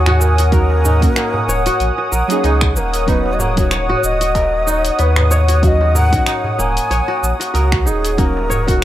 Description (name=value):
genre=organic downtempo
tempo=94 BPM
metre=4/4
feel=swing 56% on 16ths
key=unclear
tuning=A4 = 440 Hz
part: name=breathy Native American-style cedar flute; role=melody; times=0.0-8.8 s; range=Gb4 to Ab5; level=-21 LUFS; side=left 1 dB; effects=ping-pong delay
part: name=deep mellow chord stab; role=accompaniment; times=0.0-8.8 s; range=Gb3 to Ab4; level=-23 LUFS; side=right 2 dB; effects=chorus, sidechain pumping
part: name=warm analog pad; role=sustained chords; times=0.0-8.8 s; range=Db5 to Eb6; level=-21 LUFS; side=equal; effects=chorus, sidechain pumping
part: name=kora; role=arpeggios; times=0.0-8.8 s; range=Bb3 to Db5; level=-23 LUFS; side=equal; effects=ping-pong delay
part: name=warm sub bass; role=bass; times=0.0-8.8 s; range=Eb1 to Eb2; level=-16 LUFS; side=equal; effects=none
part: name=deep house drum kit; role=drums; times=0.1-8.8 s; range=cabasa, finger snaps, hi-hat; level=-23 LUFS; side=equal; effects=none
part: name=darbuka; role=percussion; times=0.1-8.8 s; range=none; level=-26 LUFS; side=right 1 dB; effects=none
part: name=electronic kick drum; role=drums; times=0.5-8.8 s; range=none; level=-17 LUFS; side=equal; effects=none
room=digital ambience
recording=rough home demo mix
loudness=-13 LUFS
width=side -13 dB against mid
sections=0.0-8.8 A section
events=none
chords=0.0 Ebm7; 3.1 Badd9/D#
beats=| 0.52 1.16 1.80 2.44 | 3.08 3.71 4.35 4.99 | 5.63 6.27 6.91 7.54 | 8.18 8.82